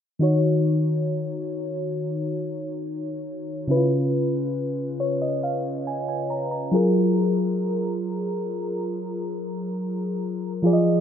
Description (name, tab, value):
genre	R&B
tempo	69 BPM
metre	4/4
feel	straight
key	Eb minor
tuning	A4 = 438 Hz
part	FM electric piano with soft pad layer	accompaniment	0.2-11.0 s	Db3 to Bb5	-22 LUFS	left 1 dB	chorus
room	moderate lush hall reverb, RT60 2.9 s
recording	low-pass filter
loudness	-22 LUFS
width	side -8 dB against mid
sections	0.2-11.0 A section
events	filter sweep 0.2-11.0; FM electric piano fill 4.6-7.2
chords	0.2 Ebm7; 3.7 Db7; 6.7 Gbmaj9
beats	| 0.21 1.08 1.95 2.81 | 3.69 4.55 5.42 6.29 | 7.16 8.03 8.90 9.77 | 10.64